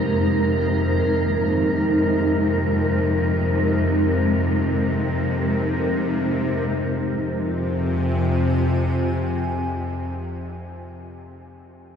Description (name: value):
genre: dark ambient drone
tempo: free time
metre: none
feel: none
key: F minor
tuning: A4 = 440 Hz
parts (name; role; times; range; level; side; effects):
- granular cloud pad; sustained chords; 0.0-10.4 s; F2 to Ab5; -23 LUFS; equal; built-in reverb
- bowed-like drone; drone; 0.0-9.9 s; F2 to C3; -23 LUFS; left 1 dB; built-in reverb
- wind-like tuned noise texture; texture; 0.0-6.7 s; Bb4; -28 LUFS; right 3 dB; built-in reverb
room: wet huge ambient reverb, RT60 7.5 s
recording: none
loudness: -19 LUFS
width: side -7 dB against mid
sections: 0.0-6.7 A section; 6.7-11.3 B section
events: filter sweep on synth drone 0.0-6.7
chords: 0.0 Abadd9/F; 6.7 Fmadd9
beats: free time